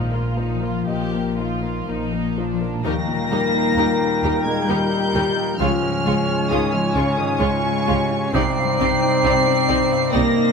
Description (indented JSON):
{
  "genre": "cinematic, emotional film score for orchestra",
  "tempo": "59-68 BPM",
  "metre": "3/4",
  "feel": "rubato",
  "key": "Eb major",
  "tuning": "A4 = 440 Hz",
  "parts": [
    { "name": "warm studio violin section", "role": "melody", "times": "0.0-10.5 s", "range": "Eb4 to C7", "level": "-26 LUFS", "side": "right 1 dB", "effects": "none" },
    { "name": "warm studio violin section", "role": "second line", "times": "0.0-10.2 s", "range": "D4 to D5", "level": "-30 LUFS", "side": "left 1 dB", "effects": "none" },
    { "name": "clear baby grand piano", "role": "accompaniment", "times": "0.0-10.5 s", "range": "C2 to F5", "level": "-26 LUFS", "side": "left 1 dB", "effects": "none" },
    { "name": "warm studio viola section", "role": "accompaniment", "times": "0.0-10.2 s", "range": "F3 to F4", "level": "-29 LUFS", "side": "right 1 dB", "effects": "none" },
    { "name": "concert harp", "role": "arpeggios", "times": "0.0-10.5 s", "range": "Bb2 to Eb5", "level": "-26 LUFS", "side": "left 5 dB", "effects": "none" },
    { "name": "warm studio cello section", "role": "bass", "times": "0.0-10.5 s", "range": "Bb2 to C4", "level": "-26 LUFS", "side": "right 3 dB", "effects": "none" },
    { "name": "warm studio double bass section", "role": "bass", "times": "0.0-10.2 s", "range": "Bb1 to Eb2", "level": "-28 LUFS", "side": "right 3 dB", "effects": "none" },
    { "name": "warm cor anglais", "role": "second line", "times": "2.8-10.5 s", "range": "Bb4 to D5", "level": "-28 LUFS", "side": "right 4 dB", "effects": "none" },
    { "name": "concert flute", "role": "second line", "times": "2.9-10.5 s", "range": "G5 to Ab5", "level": "-29 LUFS", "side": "left 2 dB", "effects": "none" },
    { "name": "mellow clarinet", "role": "second line", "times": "2.9-10.5 s", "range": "Db4 to Eb4", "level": "-29 LUFS", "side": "left 3 dB", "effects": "none" },
    { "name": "dark French horn section", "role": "sustained chords", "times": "2.9-10.5 s", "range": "Db4 to C5", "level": "-24 LUFS", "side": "left 6 dB", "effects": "none" }
  ],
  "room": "moderate recital hall reverb, RT60 1.6 s",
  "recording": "none",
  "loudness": "-17 LUFS",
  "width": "side -5 dB against mid",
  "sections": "0.0-2.9 A section; 2.9-10.5 B section",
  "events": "none",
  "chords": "0.0 Bbsus4; 2.9 Eb; 5.6 Db; 8.3 Cmadd9"
}